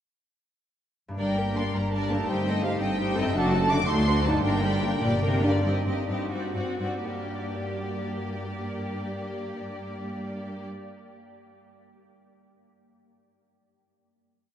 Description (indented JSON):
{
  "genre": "classical, dramatic, fast romantic movement for symphony orchestra",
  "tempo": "79-113 BPM (dotted quarters)",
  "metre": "6/8",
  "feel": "rubato",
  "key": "G minor",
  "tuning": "A4 = 438 Hz",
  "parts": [
    { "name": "concert harp", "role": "arpeggios", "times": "1.1-11.4 s", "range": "F#2 to D5", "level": "-34 LUFS", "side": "equal", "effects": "none" },
    { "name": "warm symphonic violin section", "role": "melody", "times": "1.2-10.7 s", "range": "D5 to D6", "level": "-33 LUFS", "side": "right 1 dB", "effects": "none" },
    { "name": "rich symphonic violin section", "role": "second line", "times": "1.2-10.6 s", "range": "D4 to Eb5", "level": "-33 LUFS", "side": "equal", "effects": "none" },
    { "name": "clear symphonic viola section", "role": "accompaniment", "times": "1.2-10.7 s", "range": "F#3 to F#4", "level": "-34 LUFS", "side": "left 2 dB", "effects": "none" },
    { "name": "rich symphonic cello section", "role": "bass", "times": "1.2-10.6 s", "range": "D2 to D3", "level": "-31 LUFS", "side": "equal", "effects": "none" },
    { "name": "rich symphonic double bass section", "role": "bass", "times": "1.2-5.6 s", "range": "F#1 to D2", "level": "-31 LUFS", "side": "equal", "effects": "none" },
    { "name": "mellow French horn section", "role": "sustained chords", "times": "1.5-5.5 s", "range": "F#3 to Eb4", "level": "-34 LUFS", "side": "left 1 dB", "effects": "none" }
  ],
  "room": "wet cathedral reverb, RT60 5.6 s",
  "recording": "in a vast, echoing space, nothing above 10.8 kHz",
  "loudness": "-25 LUFS",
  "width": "side -10 dB against mid",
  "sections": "1.2-5.6 A section; 5.6-7.0 coda; 7.0-9.9 final chord",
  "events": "slowing down 3.9-7.0",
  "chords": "1.2 Gm; 2.3 Am7b5/G; 3.3 D/F#; 3.9 D7b9; 4.4 Gm; 5.6 Cm/G; 6.3 D7/G; 7.0 Gm"
}